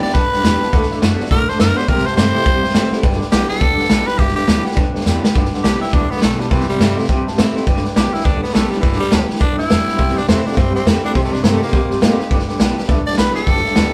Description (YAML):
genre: rockabilly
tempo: 207 BPM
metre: 4/4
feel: swing 61% on 8ths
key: G major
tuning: A4 = 440 Hz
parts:
  - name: raspy tenor saxophone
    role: melody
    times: 0.0-13.9 s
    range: E3 to D5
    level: -22 LUFS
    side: equal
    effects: none
  - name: picked steel-string acoustic guitar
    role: accompaniment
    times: 0.0-13.9 s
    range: G2 to G4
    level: -27 LUFS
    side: equal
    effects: none
  - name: warm upright piano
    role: accompaniment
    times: 0.0-13.9 s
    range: A4 to Bb5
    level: -31 LUFS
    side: equal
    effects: none
  - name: electric guitar through a small old amp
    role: riff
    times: 0.0-13.9 s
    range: G2 to B3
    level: -24 LUFS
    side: equal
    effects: tremolo
  - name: upright bass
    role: bass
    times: 0.0-13.9 s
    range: G1 to Bb2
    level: -26 LUFS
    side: equal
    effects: none
  - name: vintage drum kit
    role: drums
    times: 0.0-13.8 s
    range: hi-hat, kick drum, snare drum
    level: -18 LUFS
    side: equal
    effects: none
room: light reverb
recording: band playing live in one room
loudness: -16 LUFS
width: mono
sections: 0.0-5.4 A section; 5.4-13.9 B section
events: tenor saxophone solo 0.0-5.4; drum fill 5.1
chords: 0.0 G; 0.7 D; 1.9 C; 3.0 G; 6.5 C; 7.7 G; 10.0 C; 11.2 Cm7; 12.3 G